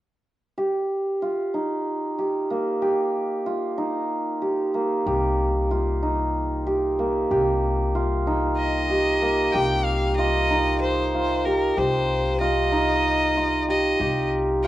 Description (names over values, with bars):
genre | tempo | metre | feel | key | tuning
contemporary instrumental, contemporary | 188 BPM (eighths) | 7/8 | straight | C minor | A4 = 439 Hz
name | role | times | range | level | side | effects
hammered dulcimer | arpeggios | 0.6-14.7 s | Bb3 to G4 | -22 LUFS | right 1 dB | none
upright bass | bass | 5.1-14.7 s | C2 | -27 LUFS | left 1 dB | none
bright violin | melody | 8.6-14.7 s | Bb4 to G5 | -24 LUFS | left 1 dB | none
room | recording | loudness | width
moderate studio reverb, RT60 0.8 s | worn, warbling old tape, cassette tape, warbly pitch drift | -21 LUFS | side -14 dB against mid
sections
0.6-9.5 A section; 9.5-14.7 B section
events
none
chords
0.6 Cm7